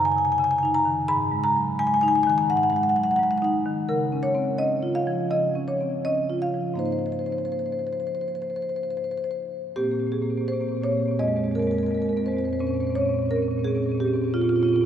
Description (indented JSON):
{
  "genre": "classical, contemporary piece for solo marimba",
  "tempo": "80-86 BPM",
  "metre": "4/4",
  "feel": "rubato",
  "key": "Bb minor",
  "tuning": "A4 = 440 Hz",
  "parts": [
    { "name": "marimba with medium mallets", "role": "solo", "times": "0.0-14.9 s", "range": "F2 to Cb6", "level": "-22 LUFS", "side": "equal", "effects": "none" }
  ],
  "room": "wet cathedral reverb, RT60 6.0 s",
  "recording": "recorded in a church or concert hall",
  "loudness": "-22 LUFS",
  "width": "side -9 dB against mid",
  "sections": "0.0-9.8 A section; 9.8-14.9 B section",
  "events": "none",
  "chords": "0.0 Gb6; 1.1 Ab5; 3.9 Db; 6.8 Abadd9; 9.8 Bbsus2; 11.2 Fm; 12.6 Bbmadd9"
}